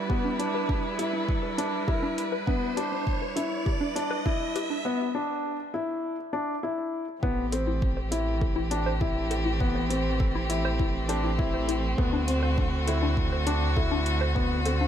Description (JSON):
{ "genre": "piano and strings electronica", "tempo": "101 BPM", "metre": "4/4", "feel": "straight", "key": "unclear", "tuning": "A4 = 440 Hz", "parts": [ { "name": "dark string quartet", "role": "sustained chords", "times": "0.0-14.9 s", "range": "D3 to B4", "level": "-31 LUFS", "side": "right 2 dB", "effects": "none" }, { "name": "riser", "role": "sound effects", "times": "0.0-4.9 s", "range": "none", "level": "-36 LUFS", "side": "right 2 dB", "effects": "none" }, { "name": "warbly dusty pluck", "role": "arpeggios", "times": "0.1-14.9 s", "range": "D4 to C5", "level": "-34 LUFS", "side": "left 2 dB", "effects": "chorus, sidechain pumping, ping-pong delay" }, { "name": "dark upright piano", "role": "riff", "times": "0.1-14.9 s", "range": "B3 to E4", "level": "-30 LUFS", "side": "left 2 dB", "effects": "ping-pong delay" }, { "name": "electronic kick drum", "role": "drums", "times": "0.1-14.5 s", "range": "none", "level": "-28 LUFS", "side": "equal", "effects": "none" }, { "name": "electronic hi-hat", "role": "drums", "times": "0.4-14.8 s", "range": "none", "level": "-37 LUFS", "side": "right 1 dB", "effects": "none" }, { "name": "warm sub bass", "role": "bass", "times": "7.2-14.9 s", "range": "A1 to D2", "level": "-29 LUFS", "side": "equal", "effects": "sidechain pumping" } ], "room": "light reverb", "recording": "none", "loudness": "-25 LUFS", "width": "side -9 dB against mid", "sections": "0.0-7.2 A section; 7.2-14.9 B section", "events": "build-up 0.0-7.2; riser 0.0-4.9; filter sweep on synth arpeggio sound 0.0-7.2; break 4.9-7.2; drop 7.2-14.9", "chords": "0.0 Em7; 7.2 Am7; 12.0 D7" }